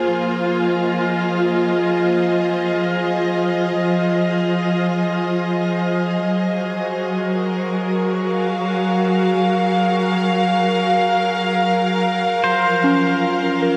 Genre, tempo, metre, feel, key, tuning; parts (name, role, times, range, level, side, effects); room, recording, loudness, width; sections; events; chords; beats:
ambient; free time; A4 = 443 Hz
muted studio string section; sustained chords; 0.0-13.8 s; F3 to F5; -19 LUFS; equal
soft synth bell; arpeggios; 0.0-0.1, 12.8-13.8 s; Db4 to Bb4; -21 LUFS; equal; chorus, phaser, delay
pedal steel guitar; melody; 12.4-13.8 s; C5; -23 LUFS; equal; delay
wet shimmer reverb, RT60 7.5 s; -19 LUFS; mono
0.1-13.8 A section
0.1 Fm7; 6.2 Gbmaj7; 12.4 Db6/F
free time